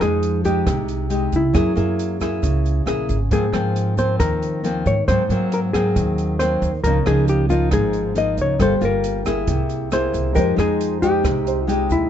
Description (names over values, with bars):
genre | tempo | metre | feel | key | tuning
bossa nova | 136 BPM | 4/4 | straight | Ab major | A4 = 440 Hz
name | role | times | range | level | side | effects
hollow-body jazz guitar | melody | 0.0-12.1 s | Fb4 to Eb5 | -22 LUFS | left 1 dB | none
nylon-string guitar | accompaniment | 0.0-12.1 s | Ab2 to A4 | -21 LUFS | left 2 dB | none
upright bass | bass | 0.0-12.1 s | G1 to Ab2 | -22 LUFS | right 2 dB | none
open jazz drum kit | drums | 0.0-12.0 s | hi-hat, kick drum, rim click | -26 LUFS | right 1 dB | none
tube shaker | percussion | 0.0-12.1 s | none | -46 LUFS | right 8 dB | none
clear concert grand piano | accompaniment | 10.3-12.1 s | Eb4 to G5 | -28 LUFS | right 7 dB | none
room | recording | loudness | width
little or no reverb | nothing above 7.9 kHz | -17 LUFS | side -10 dB against mid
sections
0.0-12.1 A section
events
none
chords
0.0 Fm9; 1.6 Gb9; 3.3 Ab69; 5.1 Ab9; 6.8 Db69; 8.6 Gm9; 9.5 Caug7; 10.4 Fm9